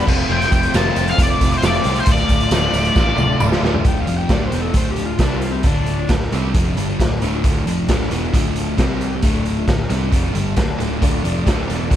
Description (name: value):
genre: classic rock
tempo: 134 BPM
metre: 4/4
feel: straight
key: D minor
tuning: A4 = 438 Hz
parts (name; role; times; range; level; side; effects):
- octave-fuzz lead guitar; melody; 0.0-3.4 s; C5 to A5; -20 LUFS; left 2 dB; wah, distortion
- picked twelve-string acoustic guitar; accompaniment; 0.0-12.0 s; F2 to A4; -28 LUFS; left 13 dB; none
- tonewheel organ; sustained chords; 0.0-3.8, 11.0-12.0 s; A3 to D5; -28 LUFS; right 1 dB; slow rotary speaker, overdrive, chorus vibrato
- crunchy overdriven guitar; riff; 0.0-12.0 s; D2 to F4; -22 LUFS; right 1 dB; none
- picked electric bass; bass; 0.1-12.0 s; D1 to C2; -23 LUFS; equal; none
- raw garage drum kit; drums; 0.1-12.0 s; crash cymbal, hi-hat, kick drum, snare drum, toms; -18 LUFS; equal; none
- tambourine; percussion; 0.1-3.5 s; none; -38 LUFS; right 19 dB; none
- overdriven slide guitar; second line; 3.9-6.1 s; C4 to G5; -27 LUFS; left 4 dB; none
room: little or no reverb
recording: none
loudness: -15 LUFS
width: side -11 dB against mid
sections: 0.0-3.9 A section; 3.9-12.0 B section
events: drum fill 3.0-3.9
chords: 0.1 F; 2.1 Dm; 5.2 C5; 5.6 Dm; 8.8 C5; 9.2 Dm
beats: | 0.30 0.75 1.19 1.63 | 2.08 2.52 2.97 3.41 | 3.86 4.30 4.75 5.20 | 5.65 6.09 6.54 6.99 | 7.44 7.89 8.34 8.78 | 9.23 9.68 10.13 10.57 | 11.02 11.47 11.91